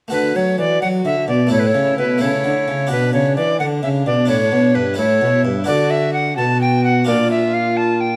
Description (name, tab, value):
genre	classical, renaissance-style consort dance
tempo	86 BPM (dotted quarters)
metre	6/8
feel	straight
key	D major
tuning	A4 = 440 Hz
part	bright alto recorder	melody	0.1-8.2 s	B4 to A5	-20 LUFS	equal	none
part	rich viola	second line	0.1-8.2 s	D4 to F#4	-28 LUFS	equal	none
part	harpsichord	accompaniment	0.1-8.2 s	G2 to Bb4	-22 LUFS	equal	none
part	warm trombone	bass	0.1-8.2 s	G2 to F#3	-24 LUFS	equal	none
room	wet stone room reverb, RT60 1.3 s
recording	vinyl crackle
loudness	-17 LUFS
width	mono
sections	0.1-8.2 A section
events	none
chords	0.1 D; 1.5 A; 2.9 Bm; 4.3 Asus4; 5.0 A; 5.7 D; 7.1 Bb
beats	| 0.12 0.82 | 1.52 2.21 | 2.91 3.61 | 4.30 4.99 | 5.68 6.38 | 7.07 7.77